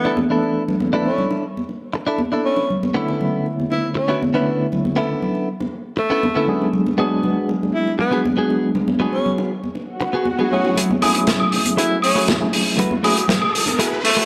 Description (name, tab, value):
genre	nu-disco, nu disco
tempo	119 BPM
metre	4/4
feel	straight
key	F# minor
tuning	A4 = 441 Hz
part	breathy tenor saxophone	melody	0.0-14.3 s	A3 to E4	-25 LUFS	equal	tape echo
part	tine electric piano	accompaniment	0.0-13.2 s	D3 to C#5	-24 LUFS	equal	overdrive, fast tremolo
part	direct-recorded clean electric guitar	riff	0.0-14.3 s	A3 to B4	-25 LUFS	equal	lush chorus, low-pass filter
part	bongos and congas	percussion	0.0-14.1 s	none	-26 LUFS	equal	none
part	swell and riser	sound effects	9.9-14.3 s	none	-29 LUFS	equal	none
part	crunchy breakbeat drum kit	drums	10.8-14.2 s	hi-hat, snare drum, woodblock	-20 LUFS	equal	none
room	moderate echo chamber reverb, RT60 1.4 s, small room ambience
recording	dark, warm production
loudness	-19 LUFS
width	mono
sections	0.0-10.8 A section; 10.8-14.3 B section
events	swell 9.9-10.8; build-up 10.8-14.3; riser 10.8-14.3; filter sweep on clean electric guitar 10.8-14.3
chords	0.0 E7sus4; 2.7 Bm11; 6.7 G#m7b5; 10.8 F#m9